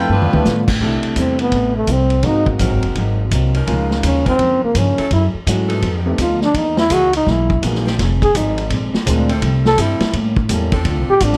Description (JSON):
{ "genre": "jazz, big band swing", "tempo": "167 BPM", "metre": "4/4", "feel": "swing 64% on 8ths", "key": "unclear", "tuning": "A4 = 440 Hz", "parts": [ { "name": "warm grand piano", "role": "accompaniment", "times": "0.0-10.7 s", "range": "C3 to Bb4", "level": "-25 LUFS", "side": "equal", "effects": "none" }, { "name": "upright bass", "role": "bass", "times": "0.0-11.4 s", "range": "F1 to A2", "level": "-21 LUFS", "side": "equal", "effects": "none" }, { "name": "bright saxophone section", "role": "melody", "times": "0.1-0.7 s", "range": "A3 to B4", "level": "-25 LUFS", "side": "equal", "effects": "plate reverb" }, { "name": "muted trombone section", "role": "second line", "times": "0.1-0.7 s", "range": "D3 to B3", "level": "-32 LUFS", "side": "equal", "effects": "none" }, { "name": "picked steel-string acoustic guitar", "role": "accompaniment", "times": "0.1-11.4 s", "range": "Ab2 to A4", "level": "-27 LUFS", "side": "equal", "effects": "none" }, { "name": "vintage drum kit", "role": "drums", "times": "0.2-11.4 s", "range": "crash cymbal, hi-hat, kick drum, ride cymbal, snare drum, toms", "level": "-24 LUFS", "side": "equal", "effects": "none" }, { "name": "bright saxophone section", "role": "sustained chords", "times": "0.8-11.2 s", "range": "F3 to Bb4", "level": "-30 LUFS", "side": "equal", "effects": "none" }, { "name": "breathy trombone", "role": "melody", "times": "1.2-11.4 s", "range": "A3 to A4", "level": "-18 LUFS", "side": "equal", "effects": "plate reverb" } ], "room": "light reverb", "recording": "none", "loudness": "-16 LUFS", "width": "mono", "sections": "0.8-11.4 A section", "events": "drum fill 0.1-0.5; trombone solo 0.8-11.4", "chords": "0.1 G9; 0.8 C6; 2.2 Ab9; 3.7 Db69; 5.1 F#m9; 5.8 F7#11; 6.5 Emaj9#11; 8.0 Fm7; 8.7 Bb9; 9.4 C6; 10.1 A7b9; 10.9 Dm7" }